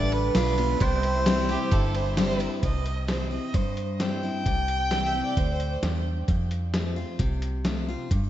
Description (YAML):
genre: honky-tonk and classic country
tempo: 131 BPM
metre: 4/4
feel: straight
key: C major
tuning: A4 = 437 Hz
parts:
  - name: mellow harmonica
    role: melody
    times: 0.0-6.0 s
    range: B4 to G5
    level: -29 LUFS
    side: right 1 dB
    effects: tape echo
  - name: picked steel-string acoustic guitar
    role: accompaniment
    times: 0.0-8.3 s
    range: F2 to F4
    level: -30 LUFS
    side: left 3 dB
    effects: none
  - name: pedal steel guitar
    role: sustained chords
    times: 0.0-2.6 s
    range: B4 to G5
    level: -38 LUFS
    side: right 2 dB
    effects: ensemble chorus
  - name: warm chamber string section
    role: sustained chords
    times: 0.0-2.6 s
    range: G3 to B4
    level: -35 LUFS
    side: right 2 dB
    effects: none
  - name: vintage muted fingered electric bass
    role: bass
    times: 0.0-8.3 s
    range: G1 to G2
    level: -28 LUFS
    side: equal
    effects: none
  - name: lo-fi sampler-style drum kit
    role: drums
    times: 0.1-8.2 s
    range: hi-hat, kick drum, ride cymbal, snare drum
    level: -29 LUFS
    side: equal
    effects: none
  - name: clear fiddle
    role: second line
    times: 1.5-5.7 s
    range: G4 to G5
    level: -34 LUFS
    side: right 3 dB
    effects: tape echo
room: moderate lush hall reverb, RT60 1.8 s, studio reverb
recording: dreamy mix soaked in reverb, nothing above 7.9 kHz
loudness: -23 LUFS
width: side -12 dB against mid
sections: 0.0-2.6 A section; 2.6-8.3 B section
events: none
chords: 0.0 G7; 0.8 C; 6.3 F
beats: 0.35 | 0.81 1.26 1.72 2.17 | 2.63 3.09 3.54 4.00 | 4.46 4.91 5.37 5.83 | 6.29 6.74 7.20 7.66 | 8.11